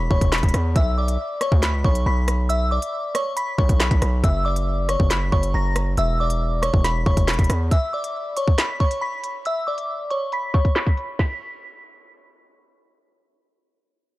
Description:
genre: hip hop, drill.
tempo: 138 BPM.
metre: 4/4.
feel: half-time.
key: B minor.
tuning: A4 = 439 Hz.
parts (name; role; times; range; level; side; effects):
glassy synth bell; melody; 0.0-12.5 s; C#5 to B6; -25 LUFS; left 1 dB; chorus, tremolo, low-pass filter, digital delay.
distorted 808-style bass; bass; 0.0-7.7 s; E1 to E2; -21 LUFS; equal; distortion.
drill drum kit; drums; 0.1-11.3 s; crash cymbal, handclaps, hi-hat, kick drum, rim click, snare drum; -20 LUFS; equal; none.
room: little or no reverb.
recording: dark, warm production, low-pass filter.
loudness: -19 LUFS.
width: side -18 dB against mid.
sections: 0.0-7.7 A section; 7.7-11.2 B section; 11.2-14.2 C section.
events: none.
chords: 0.0 E5; 0.8 Bm; 4.2 F#5; 6.0 E5; 7.7 Bm; 11.2 N.C..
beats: 0.32 | 0.76 1.19 1.63 2.06 | 2.50 2.93 3.37 3.80 | 4.24 4.67 5.11 5.54 | 5.97 6.41 6.84 7.28 | 7.71 8.15 8.58 9.02 | 9.45 9.89 10.32 10.76 | 11.19 11.63 12.06.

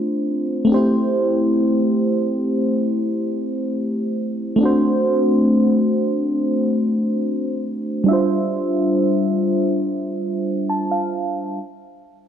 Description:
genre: R&B.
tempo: free time.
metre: none.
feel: none.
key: D minor.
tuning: A4 = 439 Hz.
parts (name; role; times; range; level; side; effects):
mellow FM electric piano; solo; 0.0-11.6 s; G3 to A5; -17 LUFS; equal; chorus, low-pass filter.
room: light reverb, digital ambience.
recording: none.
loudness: -17 LUFS.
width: side -9 dB against mid.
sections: 0.0-11.6 A section.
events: filter sweep on FM electric piano 0.0-11.6; FM electric piano fill 10.2-11.6.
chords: 0.0 Dm7; 0.7 C6; 4.6 D7; 8.1 Dm11.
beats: free time.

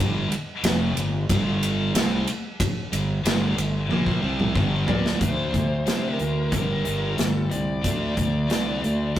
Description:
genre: hard rock.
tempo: 92 BPM.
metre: 4/4.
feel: straight.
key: G minor.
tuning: A4 = 444 Hz.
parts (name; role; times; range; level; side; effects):
scooped high-gain guitar; riff; 0.0-9.2 s; F2 to D4; -31 LUFS; left 4 dB; distortion.
sludgy distorted guitar; riff; 0.0-9.2 s; F2 to D4; -28 LUFS; right 1 dB; overdrive.
fuzz fingered electric bass; bass; 0.0-9.2 s; F1 to C3; -27 LUFS; equal; overdrive.
big rock drum kit; drums; 0.3-9.2 s; hi-hat, kick drum, ride cymbal, snare drum, toms; -25 LUFS; equal; none.
bluesy overdriven lead guitar; melody; 4.9-9.2 s; Bb4 to D5; -31 LUFS; equal; distortion.
room: light reverb.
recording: rough rehearsal-room recording, tube saturation.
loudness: -21 LUFS.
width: side -12 dB against mid.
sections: 0.0-5.2 A section; 5.2-9.2 B section.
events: drum fill 3.9-5.2.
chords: 0.0 Gm; 5.2 D5; 6.5 Gm; 7.8 D5.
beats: 0.64 1.29 1.94 | 2.59 3.25 3.90 4.55 | 5.21 5.87 6.52 7.18 | 7.84 8.50 9.16.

